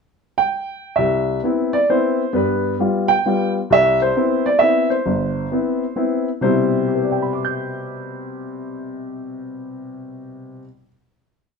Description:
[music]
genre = jazz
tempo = 133 BPM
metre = 3/4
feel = swing 67% on 8ths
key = C major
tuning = A4 = 439 Hz
[part]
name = warm upright piano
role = solo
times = 0.4-10.9 s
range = G1 to G6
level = -18 LUFS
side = equal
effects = none
[sound]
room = moderate studio reverb, RT60 0.9 s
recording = dark, warm production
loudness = -16 LUFS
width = side -5 dB against mid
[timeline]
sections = 0.0-1.0 pickup bar; 1.0-6.4 A section; 6.4-9.1 final chord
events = none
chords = 0.0 N.C.; 1.0 Cmaj7; 2.3 G7; 3.7 Cmaj7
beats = 0.08 0.54 | 0.99 1.44 1.89 | 2.35 2.80 3.25 | 3.70 4.15 4.60 | 5.05 5.51 5.96 | 6.41 6.86 7.31 | 7.76 8.22 8.67

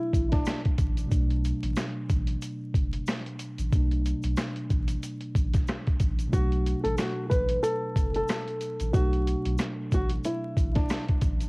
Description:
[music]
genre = hip hop, boom-bap hip-hop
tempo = 92 BPM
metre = 4/4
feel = swing 56% on 16ths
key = B minor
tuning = A4 = 443 Hz
[part]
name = flamenco guitar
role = melody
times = 0.0-0.6, 6.3-11.0 s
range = D4 to B4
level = -30 LUFS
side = equal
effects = high-pass filter, low-pass filter, cassette tape, analog delay
[part]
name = mellow tine electric piano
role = accompaniment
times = 0.0-11.5 s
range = B2 to D4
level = -34 LUFS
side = equal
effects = cassette tape, high-pass filter, low-pass filter
[part]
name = sub bass with octave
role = bass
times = 0.1-11.5 s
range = F#1 to B1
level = -29 LUFS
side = equal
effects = transformer saturation
[part]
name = boom bap sampler-style drum kit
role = drums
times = 0.1-11.5 s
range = hi-hat, kick drum, rim click, snare drum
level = -26 LUFS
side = equal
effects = cassette tape
[part]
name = tube shaker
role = percussion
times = 0.1-11.5 s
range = none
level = -50 LUFS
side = left 2 dB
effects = none
[sound]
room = digital ambience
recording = home recording on cassette, vinyl crackle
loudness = -25 LUFS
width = side -30 dB against mid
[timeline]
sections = 0.0-11.5 A section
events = none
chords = 0.0 Bm7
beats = 0.46 | 1.11 1.76 2.42 3.07 | 3.72 4.37 5.03 5.68 | 6.33 6.98 7.63 8.29 | 8.94 9.59 10.24 10.89

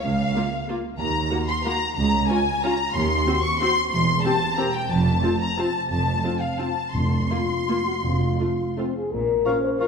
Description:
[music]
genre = classical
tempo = 156-202 BPM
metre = 3/4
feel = rubato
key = Bb minor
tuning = A4 = 442 Hz
[part]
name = warm symphonic violin section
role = melody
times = 0.0-9.9 s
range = F5 to Db6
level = -27 LUFS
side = left 4 dB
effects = none
[part]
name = warm symphonic violin section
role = second line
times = 0.0-9.9 s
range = Db5 to Db6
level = -28 LUFS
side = left 2 dB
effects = none
[part]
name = warm symphonic cello section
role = bass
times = 0.0-9.4 s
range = Db2 to Bb2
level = -27 LUFS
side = right 3 dB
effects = none
[part]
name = warm symphonic double bass section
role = bass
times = 0.0-9.4 s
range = E1 to Eb2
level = -28 LUFS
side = right 4 dB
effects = none
[part]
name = dark French horn section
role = sustained chords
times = 0.3-9.9 s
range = Bb3 to C5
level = -28 LUFS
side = left 4 dB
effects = none
[part]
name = warm symphonic viola section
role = accompaniment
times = 0.4-9.9 s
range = A3 to G4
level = -30 LUFS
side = equal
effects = none
[part]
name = timpani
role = percussion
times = 6.9-8.6 s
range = F2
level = -28 LUFS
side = left 1 dB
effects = none
[part]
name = clear clarinet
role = second line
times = 9.5-9.9 s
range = Db4 to F4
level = -29 LUFS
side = left 2 dB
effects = none
[part]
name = silver concert flute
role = second line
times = 9.5-9.9 s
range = Db6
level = -33 LUFS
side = left 2 dB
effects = none
[part]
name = warm oboe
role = second line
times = 9.5-9.9 s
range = F5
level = -32 LUFS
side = left 1 dB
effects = none
[part]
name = mellow bassoon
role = accompaniment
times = 9.5-9.9 s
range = F3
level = -31 LUFS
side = right 3 dB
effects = none
[sound]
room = wet scoring stage reverb, RT60 1.7 s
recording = minimal, uncompressed stereo recording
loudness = -20 LUFS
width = side -6 dB against mid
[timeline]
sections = 0.0-9.1 A section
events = none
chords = 0.0 Bbm/Db; 1.0 Ebm; 2.0 Bbm/Db; 2.9 Cdim/Eb; 3.9 C7/E; 4.9 F; 6.9 Fsus4; 8.0 F; 9.1 Bbm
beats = | 0.03 0.35 0.68 | 0.99 1.31 1.65 | 1.97 2.29 2.63 | 2.94 3.26 3.60 | 3.91 4.24 4.58 | 4.90 5.23 5.58 | 5.90 6.23 6.58 | 6.93 7.30 7.67 | 8.03 8.40 8.77 | 9.12 9.46 9.80

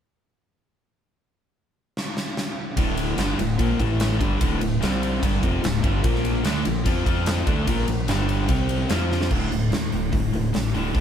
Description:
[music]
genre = hard rock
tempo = 147 BPM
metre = 4/4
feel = straight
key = D minor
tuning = A4 = 437 Hz
[part]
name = huge arena drum kit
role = drums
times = 2.0-11.0 s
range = crash cymbal, hi-hat, kick drum, ride cymbal, snare drum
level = -25 LUFS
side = equal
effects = none
[part]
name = distorted electric guitar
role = riff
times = 2.8-11.0 s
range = D2 to F4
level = -26 LUFS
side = left 7 dB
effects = distortion
[part]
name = sludgy distorted guitar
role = riff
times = 2.8-11.0 s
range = D2 to F4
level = -27 LUFS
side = right 6 dB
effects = overdrive
[part]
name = growling fingered electric bass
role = bass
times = 2.8-11.0 s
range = D1 to F2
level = -27 LUFS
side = equal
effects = overdrive
[sound]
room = light reverb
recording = band playing live in one room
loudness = -20 LUFS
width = side -9 dB against mid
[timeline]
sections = 1.1-2.8 A section; 2.8-9.3 B section; 9.3-11.0 C section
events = drum fill 2.0-2.8, 9.1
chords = 1.1 N.C.; 2.8 Dm; 3.8 A5; 4.2 D5; 4.8 C5; 5.2 Dm; 6.0 Bb5; 7.1 F5; 7.5 Bb5; 8.1 G5; 8.5 C5; 8.9 F5; 9.3 D5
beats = | 1.15 1.55 1.96 2.37 | 2.78 3.19 3.59 4.00 | 4.41 4.82 5.23 5.63 | 6.04 6.45 6.86 7.27 | 7.67 8.08 8.49 8.90 | 9.31 9.72 10.12 10.53 | 10.94

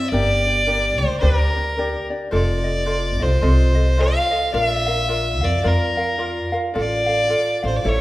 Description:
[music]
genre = Hawaiian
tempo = 109 BPM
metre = 4/4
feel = swing 60% on 8ths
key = D minor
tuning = A4 = 440 Hz
[part]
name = warm fiddle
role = melody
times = 0.0-8.0 s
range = Bb4 to F5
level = -21 LUFS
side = equal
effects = none
[part]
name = ukulele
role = accompaniment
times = 0.0-8.0 s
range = C4 to F5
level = -24 LUFS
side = equal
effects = none
[part]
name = upright bass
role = bass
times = 0.1-8.0 s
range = F1 to F2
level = -20 LUFS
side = equal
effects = none
[sound]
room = wet recital hall reverb, RT60 1.5 s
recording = recorded in a church or concert hall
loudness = -17 LUFS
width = side -17 dB against mid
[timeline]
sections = 0.0-8.0 A section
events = none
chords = 0.1 Gm; 2.3 F7; 4.5 Bb; 6.7 Dm/A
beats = | 0.12 0.67 1.22 1.77 | 2.33 2.88 3.43 3.98 | 4.53 5.09 5.64 6.19 | 6.75 7.30 7.85

